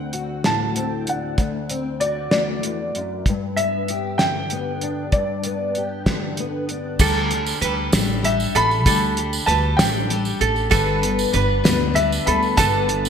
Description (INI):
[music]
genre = indie folk with a building arrangement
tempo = 64 BPM (dotted quarters)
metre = 6/8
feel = straight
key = D mixolydian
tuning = A4 = 440 Hz
[part]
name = clear upright piano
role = melody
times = 0.0-13.1 s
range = D5 to B5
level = -23 LUFS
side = equal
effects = ping-pong delay
[part]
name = fingerpicked steel-string acoustic guitar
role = accompaniment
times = 0.0-7.0 s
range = D2 to G4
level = -26 LUFS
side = left 3 dB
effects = ensemble chorus
[part]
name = cloth-damped thuddy drum kit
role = drums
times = 0.1-13.0 s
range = crash cymbal, hi-hat, kick drum, snare drum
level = -22 LUFS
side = equal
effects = gated reverb
[part]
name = picked steel-string acoustic guitar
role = accompaniment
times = 7.0-13.1 s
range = G2 to B4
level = -24 LUFS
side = left 5 dB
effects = none
[part]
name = ukulele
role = arpeggios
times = 7.0-13.1 s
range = A4 to B4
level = -23 LUFS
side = right 6 dB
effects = none
[part]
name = upright bass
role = bass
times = 7.0-13.1 s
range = G1 to D2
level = -24 LUFS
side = equal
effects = none
[part]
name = tambourine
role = percussion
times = 7.0-13.1 s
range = none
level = -30 LUFS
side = right 6 dB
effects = none
[sound]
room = wet lush hall reverb, RT60 1.6 s, small room ambience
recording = bright 1980s-style digital production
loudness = -18 LUFS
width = side -7 dB against mid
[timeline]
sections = 0.0-7.0 A section; 7.0-13.1 B section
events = none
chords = 0.0 D7; 3.3 G; 7.0 Dsus4; 10.7 G